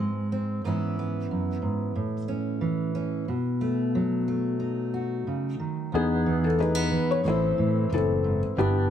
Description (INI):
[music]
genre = folk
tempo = 91 BPM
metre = 4/4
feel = straight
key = E major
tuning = A4 = 439 Hz
[part]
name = fingerpicked steel-string acoustic guitar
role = accompaniment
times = 0.0-8.9 s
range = E2 to A4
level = -26 LUFS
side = right 1 dB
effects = none
[part]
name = felt-muted upright piano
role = melody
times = 5.9-8.9 s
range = B3 to C#5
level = -25 LUFS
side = left 4 dB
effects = none
[part]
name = electric guitar through a small old amp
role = arpeggios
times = 5.9-8.9 s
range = B3 to D4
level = -33 LUFS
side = right 4 dB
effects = harmonic tremolo
[part]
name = fretless electric bass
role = bass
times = 5.9-8.9 s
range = F#1 to A2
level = -27 LUFS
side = equal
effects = none
[sound]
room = light reverb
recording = none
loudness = -24 LUFS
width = side -9 dB against mid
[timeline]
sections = 0.0-5.9 A section; 5.9-8.9 B section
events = none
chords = 0.0 G#; 0.6 C#m7/G#; 2.0 A; 3.3 B7; 5.9 Emaj7; 7.3 Am